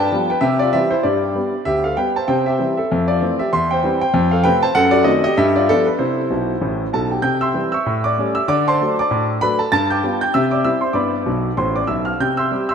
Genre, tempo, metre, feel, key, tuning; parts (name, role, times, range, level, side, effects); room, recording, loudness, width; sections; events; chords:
jazz, stride piano; 194 BPM; 4/4; swing 59% on 8ths; C major; A4 = 440 Hz
warm concert grand piano; solo; 0.0-12.7 s; A1 to A6; -15 LUFS; equal
wet lush hall reverb, RT60 2.6 s; rough home demo mix; -15 LUFS; side -7 dB against mid
0.0-7.2 A section; 7.2-12.7 A section
grand piano fill 6.3-7.2, 11.3-12.2
0.4 C; 1.1 G; 2.3 C; 2.9 Fmaj7; 3.5 C/E; 4.1 F; 4.8 F#dim7; 5.4 G7; 6.0 C; 7.9 A7; 8.5 D7; 9.7 G7; 10.3 C; 11.0 G; 12.2 C